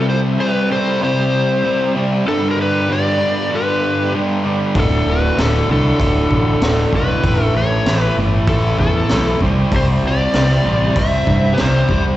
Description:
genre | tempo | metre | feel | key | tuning
blues rock power trio and southern rock | 97 BPM | 4/4 | straight | unclear | A4 = 444 Hz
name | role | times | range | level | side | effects
overdriven slide guitar | melody | 0.0-12.0 s | A4 to E5 | -20 LUFS | left 1 dB | slapback echo
dark smooth lead guitar | second line | 0.0-12.0 s | D4 to C5 | -27 LUFS | right 3 dB | overdrive, slapback echo
overdriven tonewheel organ | sustained chords | 0.0-12.2 s | E3 to E5 | -30 LUFS | right 2 dB | none
fuzz guitar | riff | 0.0-12.2 s | D2 to C4 | -18 LUFS | equal | distortion
growling picked electric bass | bass | 4.8-12.1 s | D1 to G2 | -18 LUFS | equal | overdrive
raw garage drum kit | drums | 4.8-12.0 s | hi-hat, kick drum, snare drum | -20 LUFS | equal | none
room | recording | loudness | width
light reverb | live gig heard through the venue's PA, recital hall reverb, nothing above 8.0 kHz | -14 LUFS | side -14 dB against mid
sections
0.0-12.2 A section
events
none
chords
0.0 C; 2.3 G; 4.8 D; 7.3 A; 9.4 C

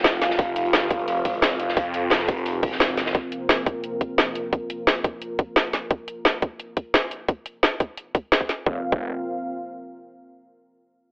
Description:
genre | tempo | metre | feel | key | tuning
dark technical drum and bass | 174 BPM | 4/4 | straight | F minor | A4 = 440 Hz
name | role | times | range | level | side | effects
dark analog pad | sustained chords | 0.0-8.8 s | C4 to F5 | -29 LUFS | equal | chorus, sidechain pumping
phased detuned saw bass | bass | 0.0-3.1, 8.7-9.1 s | F1 to F2 | -28 LUFS | equal | phaser, overdrive, sidechain pumping
crunchy breakbeat drum kit | drums | 0.0-3.1 s | hi-hat, snare drum | -29 LUFS | equal | high-pass filter on hats, high-pass filter on snare, high-pass filter on room
drum and bass drum kit | drums | 0.0-8.6 s | hi-hat, snare drum | -20 LUFS | equal | overdrive
electronic kick drum | drums | 0.4-9.0 s | none | -22 LUFS | equal | overdrive
room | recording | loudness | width
light reverb, digital ambience | telephone sound | -21 LUFS | side -32 dB against mid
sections
0.0-8.7 A section; 8.7-10.0 B section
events
filter sweep on analog synth pad 0.0-8.7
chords
0.0 F5

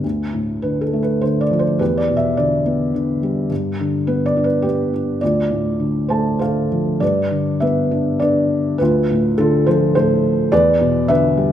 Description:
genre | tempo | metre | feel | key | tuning
classical, lyrical solo piano | 104 BPM | 3/4 | rubato | D dorian | A4 = 440 Hz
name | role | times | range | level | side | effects
felt-muted upright piano | solo | 0.0-11.5 s | D2 to A5 | -15 LUFS | equal | none
room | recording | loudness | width
moderate scoring stage reverb, RT60 2.1 s | minimal, uncompressed stereo recording | -15 LUFS | side -10 dB against mid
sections
0.0-7.0 A section; 7.0-11.5 B section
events
felt piano fill 5.8-7.0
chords
0.0 Dm; 1.8 Em7; 3.5 G; 5.2 Dm7; 7.0 G; 8.8 Dm; 10.5 Em7

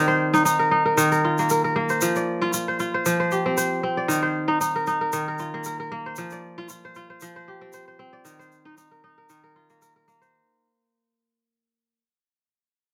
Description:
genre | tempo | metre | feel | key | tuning
west african traditional, West African string and xylophone music | 115 BPM | 4/4 | swing 54% on 16ths | unclear | A4 = 435 Hz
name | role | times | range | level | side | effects
kora | arpeggios | 0.0-12.0 s | Eb3 to D5 | -24 LUFS | equal | none
tube shaker | percussion | 0.3-10.3 s | none | -33 LUFS | equal | none
room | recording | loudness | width
moderate studio reverb, RT60 0.7 s | none | -23 LUFS | mono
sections
0.0-10.3 A section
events
fade-out 0.0-10.3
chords
0.0 Eb5; 2.0 F5; 4.1 Eb5; 6.2 F5; 8.3 Eb5

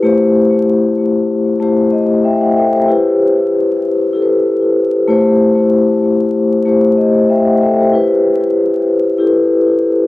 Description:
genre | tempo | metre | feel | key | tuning
hip hop | 95 BPM | 4/4 | swing 56% on 16ths | E harmonic minor | A4 = 443 Hz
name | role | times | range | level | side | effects
vibraphone with soft mallets | solo | 0.0-10.1 s | A3 to G5 | -10 LUFS | left 2 dB | cassette tape, high-pass filter, low-pass filter, tape echo
room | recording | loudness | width
moderate small room reverb, RT60 0.5 s | home recording on cassette, vinyl crackle | -10 LUFS | side -18 dB against mid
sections
0.0-7.9 A section; 7.9-10.1 B section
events
none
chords
0.0 Am7; 2.9 Em; 5.1 Am7; 7.9 Em

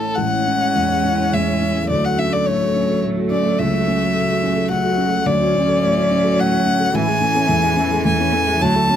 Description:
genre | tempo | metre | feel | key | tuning
neoclassical piano and strings | 107 BPM | 3/4 | rubato | A major | A4 = 440 Hz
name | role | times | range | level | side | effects
rich violin | melody | 0.0-9.0 s | A4 to A5 | -19 LUFS | left 3 dB | none
dark upright piano | accompaniment | 0.0-9.0 s | A1 to A4 | -21 LUFS | equal | none
warbly tape-like pad | sustained chords | 0.0-9.0 s | G#3 to E5 | -28 LUFS | left 2 dB | chorus, built-in reverb
rich cello | second line | 0.2-9.0 s | E3 to G#3 | -23 LUFS | right 4 dB | none
rich viola | accompaniment | 0.2-9.0 s | E3 to C#4 | -26 LUFS | right 3 dB | none
room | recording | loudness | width
little or no reverb | close, detailed microphones | -15 LUFS | side -9 dB against mid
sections
0.2-9.0 A section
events
none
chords
0.2 Amaj7; 1.9 Dmaj7; 3.6 F#m7/C#; 5.3 Dmaj7; 6.9 Amaj7

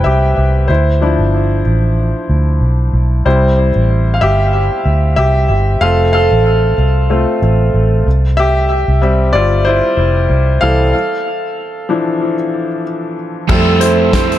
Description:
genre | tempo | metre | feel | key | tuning
piano-driven pop | 94 BPM | 4/4 | swing 56% on 16ths | C major | A4 = 440 Hz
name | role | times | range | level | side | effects
bright upright piano | accompaniment | 0.0-14.4 s | E3 to A5 | -14 LUFS | left 1 dB | tape echo
vintage muted fingered electric bass | bass | 0.0-14.4 s | F1 to F2 | -12 LUFS | equal | none
tonewheel organ | sustained chords | 13.5-14.4 s | A4 to E6 | -22 LUFS | right 2 dB | overdrive, slow rotary speaker
crunchy overdriven guitar | riff | 13.5-14.4 s | F3 to C5 | -16 LUFS | right 9 dB | none
loose indie drum kit | drums | 13.5-14.4 s | crash cymbal, handclaps, hi-hat, kick drum, snare drum | -15 LUFS | equal | none
room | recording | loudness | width
light reverb, small room ambience | echo-heavy mix | -11 LUFS | side -12 dB against mid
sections
0.0-13.5 A section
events
upright piano solo 0.0-13.5; break 10.9-13.5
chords
0.0 C; 0.7 Dmadd9; 3.3 C; 5.8 F; 8.1 C; 10.9 Dmadd9; 13.5 Fmaj7

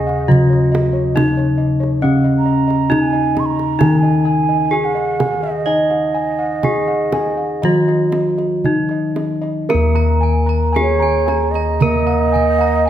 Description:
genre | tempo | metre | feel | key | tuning
Javanese gamelan | 57-69 BPM | 4/4 | straight | Eb slendro | A4 = 440 Hz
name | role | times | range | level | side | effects
gamelan-type bronze metallophone | melody | 0.0-12.9 s | Db4-25c to Eb5 | -19 LUFS | left 2 dB | none
breathy mellow bansuri | second line | 0.0-12.9 s | Db5-25c to Db6-25c | -20 LUFS | right 6 dB | none
gamelan-type bronze metallophone | accompaniment | 0.0-12.9 s | Db3-25c to Eb4 | -23 LUFS | right 2 dB | none
gamelan-type bossed gongs | arpeggios | 0.0-12.9 s | Db5-25c to Bb5 | -25 LUFS | left 2 dB | none
gamelan-type bossed gongs | bass | 0.0-12.9 s | Eb2 to Eb5 | -18 LUFS | left 1 dB | none
kendang | percussion | 0.1-12.6 s | none | -22 LUFS | right 4 dB | none
gamelan-type bronze metallophone | arpeggios | 9.7-12.9 s | Ab5 to Bb5 | -24 LUFS | right 7 dB | none
room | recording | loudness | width
moderate recital hall reverb, RT60 1.2 s | none | -13 LUFS | side -11 dB against mid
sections
0.0-9.7 A section; 9.7-12.9 B section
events
none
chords
none

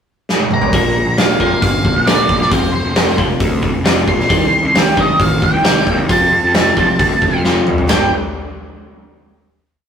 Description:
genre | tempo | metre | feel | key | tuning
quiet-loud alternative rock | 134 BPM | 4/4 | straight | G minor | A4 = 445 Hz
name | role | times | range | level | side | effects
huge arena drum kit | drums | 0.3-8.0 s | hi-hat, kick drum, ride cymbal, snare drum, toms | -15 LUFS | equal | none
octave-fuzz lead guitar | melody | 0.5-8.1 s | C5 to C6 | -16 LUFS | right 1 dB | distortion
twelve-string electric guitar | arpeggios | 0.7-8.1 s | F2 to G4 | -20 LUFS | left 1 dB | none
fuzz picked electric bass | bass | 0.7-8.1 s | F1 to G2 | -19 LUFS | equal | overdrive
room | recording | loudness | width
moderate stone room reverb, RT60 1.0 s | rough rehearsal-room recording | -11 LUFS | side -7 dB against mid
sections
0.0-0.7 pickup bar; 0.7-7.9 pre-chorus; 7.9-9.7 final chord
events
drum fill 0.3-0.7, 7.4-7.9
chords
0.0 N.C.; 0.7 Bb; 2.5 F5; 4.3 Cm; 6.1 F; 7.9 G

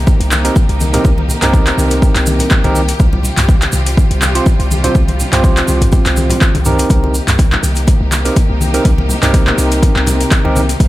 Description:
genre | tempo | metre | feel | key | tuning
afro house | 123 BPM | 4/4 | swing 55% on 16ths | C minor | A4 = 440 Hz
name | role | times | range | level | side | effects
clear symphonic string section | sustained chords | 0.0-10.9 s | C3 to G4 | -22 LUFS | left 1 dB | sidechain pumping
warm 808-style bass | bass | 0.0-10.9 s | C2 | -16 LUFS | equal | sidechain pumping
electronic kick drum | drums | 0.1-10.9 s | none | -11 LUFS | equal | overdrive
congas | percussion | 0.1-10.8 s | none | -22 LUFS | left 2 dB | none
tube shaker | percussion | 0.1-10.9 s | none | -25 LUFS | right 2 dB | none
afro-pop drum kit | drums | 0.2-10.9 s | handclaps, hi-hat, toms | -18 LUFS | equal | none
overdriven tine electric piano | stabs | 0.4-10.6 s | C4 to C5 | -18 LUFS | right 2 dB | sidechain pumping, digital delay
room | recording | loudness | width
digital ambience | none | -10 LUFS | side -16 dB against mid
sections
0.0-6.9 A section; 6.9-10.9 A section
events
none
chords
0.0 Cm7; 3.0 Fsus2/C; 6.9 Cm7

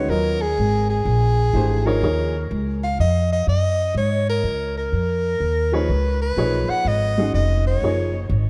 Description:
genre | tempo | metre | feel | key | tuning
modal jazz | 124 BPM | 4/4 | swing 66% on 8ths | Eb minor | A4 = 440 Hz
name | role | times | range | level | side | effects
breathy soprano saxophone | melody | 0.0-8.2 s | Ab4 to Gb5 | -25 LUFS | equal | analog delay
warm upright piano | accompaniment | 0.0-2.3, 5.7-8.1 s | Eb3 to Eb5 | -27 LUFS | equal | none
upright bass | bass | 0.0-8.5 s | F1 to Ab2 | -23 LUFS | equal | none
room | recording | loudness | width
moderate plate reverb, RT60 3.0 s | dreamy mix soaked in reverb | -20 LUFS | mono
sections
0.0-8.5 A section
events
none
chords
0.0 Eb9sus4; 5.9 Db9sus4

